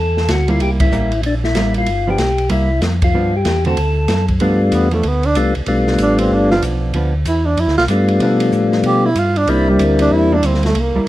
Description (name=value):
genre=soul jazz organ trio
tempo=189 BPM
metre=4/4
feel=swing 63% on 8ths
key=G mixolydian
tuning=A4 = 440 Hz
part: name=percussive tonewheel organ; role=melody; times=0.0-10.4 s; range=G3 to A4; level=-17 LUFS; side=left 2 dB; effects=slow rotary speaker, plate reverb
part: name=mellow tonewheel organ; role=bass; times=0.0-11.1 s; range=G1 to B2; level=-18 LUFS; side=equal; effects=chorus vibrato, slow rotary speaker
part: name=open jazz drum kit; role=drums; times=0.2-10.8 s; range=hi-hat, kick drum, ride cymbal, snare drum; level=-23 LUFS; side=equal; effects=none
part: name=hollow-body jazz guitar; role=accompaniment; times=0.5-11.1 s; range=D3 to F#4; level=-21 LUFS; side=right 2 dB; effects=none
part: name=breathy tenor saxophone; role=melody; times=4.7-11.1 s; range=G3 to G4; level=-17 LUFS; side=right 2 dB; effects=plate reverb
room=light reverb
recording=none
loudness=-13 LUFS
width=side -15 dB against mid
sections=0.0-4.4 A section; 4.4-11.1 B section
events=band accent 0.8, 3.0; tenor saxophone solo 4.4-11.1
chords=0.0 D; 0.6 C7; 1.9 G7; 2.5 C7; 3.1 G7; 3.8 D; 4.4 G7; 9.5 C7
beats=0.29 | 0.61 0.92 1.24 1.56 | 1.87 2.19 2.51 2.82 | 3.14 3.46 3.77 4.09 | 4.41 4.72 5.04 5.36 | 5.68 5.99 6.31 6.63 | 6.94 7.26 7.58 7.89 | 8.21 8.53 8.85 9.16 | 9.48 9.79 10.11 10.43 | 10.75 11.06